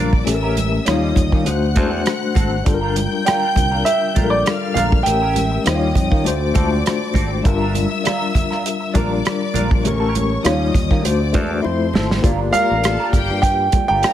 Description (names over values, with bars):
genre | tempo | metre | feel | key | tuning
lush 1970s-style soul | 100 BPM | 4/4 | swing 54% on 16ths | G dorian | A4 = 438 Hz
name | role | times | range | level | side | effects
rich studio string section | second line | 0.0-14.1 s | G4 to G6 | -27 LUFS | left 4 dB | none
tine electric piano | accompaniment | 0.0-14.1 s | F3 to D5 | -21 LUFS | left 5 dB | medium tremolo
electric guitar through a small old amp | riff | 0.0-14.1 s | G3 to Bb4 | -28 LUFS | right 5 dB | wah, spring reverb
fingered electric bass | bass | 0.0-14.0 s | G1 to Eb3 | -22 LUFS | equal | none
warm soul drum kit | drums | 0.1-14.1 s | hi-hat, kick drum, rim click, snare drum | -19 LUFS | equal | none
congas | percussion | 0.6-13.9 s | none | -29 LUFS | right 6 dB | none
warm grand piano | melody | 3.3-6.2, 12.5-14.1 s | D5 to G5 | -19 LUFS | right 2 dB | tape echo
room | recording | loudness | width
light reverb, studio ambience | none | -15 LUFS | side -11 dB against mid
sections
0.0-12.2 A section; 12.2-14.1 B section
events
drum fill 11.6-12.2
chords
0.3 A7b9; 0.9 Eb9; 1.5 D7; 2.7 Gm7; 5.1 A7b9; 5.7 Eb9; 6.3 D7; 7.5 Gm7; 9.8 A7b9; 10.4 Eb9; 11.0 D7; 11.6 Fmaj7; 12.2 Gm7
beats
| 0.27 0.87 1.47 2.06 | 2.66 3.26 3.86 4.46 | 5.06 5.66 6.25 6.85 | 7.45 8.05 8.65 9.25 | 9.85 10.44 11.04 11.64 | 12.24 12.84 13.44 14.04